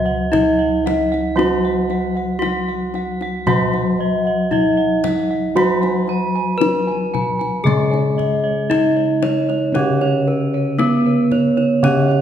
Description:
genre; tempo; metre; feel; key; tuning
Javanese gamelan; 57 BPM; 4/4; straight; C# slendro; A4 = 440 Hz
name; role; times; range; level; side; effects
gamelan-type bronze metallophone; melody; 0.0-12.2 s; B3-40c to B4-40c; -20 LUFS; right 1 dB; none
gamelan-type bronze metallophone; accompaniment; 0.0-12.2 s; C#3 to G#3+20c; -22 LUFS; equal; none
gamelan-type bossed gongs; arpeggios; 0.0-12.2 s; B4-40c to B5-40c; -26 LUFS; left 5 dB; none
gamelan-type bronze metallophone; arpeggios; 0.0-12.2 s; B4-40c to B5-40c; -24 LUFS; right 2 dB; none
gamelan-type bossed gongs; bass; 0.0-12.2 s; C#2 to F#4-20c; -24 LUFS; equal; none
kendang; percussion; 0.3-12.2 s; none; -26 LUFS; left 5 dB; none
room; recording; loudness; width
wet recital hall reverb, RT60 1.7 s; recorded in a church or concert hall; -15 LUFS; side -9 dB against mid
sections
0.0-12.2 A section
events
none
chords
none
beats
0.33 | 1.37 2.42 3.46 4.51 | 5.55 6.60 7.64 8.69 | 9.73 10.78 11.82

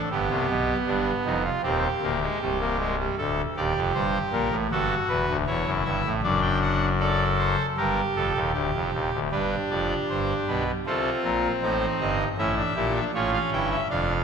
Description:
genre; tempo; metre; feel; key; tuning
classical, baroque-style 4-part fugue for pipe organ; 78 BPM; 4/4; straight; unclear; A4 = 440 Hz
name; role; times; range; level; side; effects
pipe organ, trumpet; solo; 0.0-14.2 s; C1 to G5; -23 LUFS; equal; none
room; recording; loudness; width
wet concert hall reverb, RT60 1.8 s; minimal, uncompressed stereo recording; -23 LUFS; side -6 dB against mid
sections
0.0-9.3 A section; 9.3-14.2 B section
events
none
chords
0.1 G; 1.6 Cm; 3.2 Gm/D; 4.7 A7; 6.2 D/F#; 7.8 Gm; 9.3 G7; 10.8 Cm; 12.4 A7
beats
| 0.12 0.88 1.65 2.41 | 3.18 3.94 4.71 5.47 | 6.23 7.00 7.77 8.54 | 9.31 10.08 10.85 11.62 | 12.38 13.14 13.91

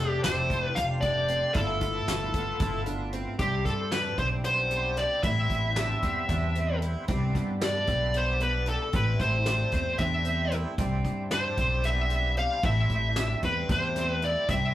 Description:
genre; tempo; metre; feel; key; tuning
progressive instrumental, band music in an uneven meter; 227 BPM (eighths); 7/8; straight; A minor; A4 = 439 Hz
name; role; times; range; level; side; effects
smooth overdriven lead guitar; melody; 0.0-14.7 s; G4 to F5; -28 LUFS; left 1 dB; none
overdriven tonewheel organ; accompaniment; 0.0-14.7 s; G3 to G4; -37 LUFS; equal; chorus vibrato, slow rotary speaker
picked twelve-string acoustic guitar; arpeggios; 0.0-14.7 s; B3 to G4; -38 LUFS; right 2 dB; none
upright bass; bass; 0.0-14.7 s; F1 to G2; -29 LUFS; equal; none
soft brush drum kit; drums; 0.2-14.6 s; hi-hat, kick drum, snare drum; -33 LUFS; equal; none
room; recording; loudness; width
moderate studio reverb, RT60 0.6 s; rough rehearsal-room recording; -25 LUFS; side -13 dB against mid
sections
0.0-3.4 A section; 3.4-14.7 B section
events
none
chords
0.0 F69; 1.6 G13; 3.4 Cmaj7; 5.2 Am9; 7.1 Cmaj7; 8.9 Am7; 10.8 Cmaj7; 12.6 Am7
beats
0.24 0.50 0.77 1.03 1.29 | 1.55 1.82 2.08 2.34 2.61 2.87 3.13 | 3.40 3.66 3.92 4.19 4.45 4.71 4.98 | 5.24 5.51 5.77 6.03 6.30 6.56 6.83 | 7.09 7.35 7.62 7.88 8.15 8.41 8.67 | 8.94 9.20 9.47 9.73 9.99 10.26 10.52 | 10.79 11.05 11.32 11.58 11.85 12.11 12.37 | 12.64 12.90 13.17 13.43 13.70 13.96 14.22 | 14.49

